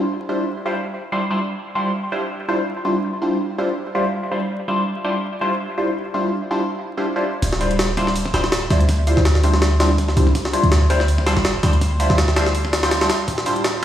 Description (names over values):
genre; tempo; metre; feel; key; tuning
drum and bass, jungle; 164 BPM; 4/4; swing 55% on 16ths; D minor; A4 = 441 Hz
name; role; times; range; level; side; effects
band-passed chord stab; stabs; 0.0-13.8 s; G3 to C5; -20 LUFS; equal; phaser, dub echo
warm 808-style bass; bass; 7.4-13.8 s; D1 to D2; -18 LUFS; equal; none
jungle sampler-style drum kit; drums; 7.4-13.8 s; hi-hat, kick drum, snare drum; -21 LUFS; equal; high-pass filter on hats, studio reverb, high-pass filter on kick, high-pass filter on snare
room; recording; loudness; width
moderate echo chamber reverb, RT60 1.6 s; played on a big sound system in a bare room, stone room reverb, vinyl crackle, high-pass filter; -17 LUFS; side -11 dB against mid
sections
0.0-7.4 A section; 7.4-13.8 B section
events
build-up 7.4-13.8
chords
0.0 Dm11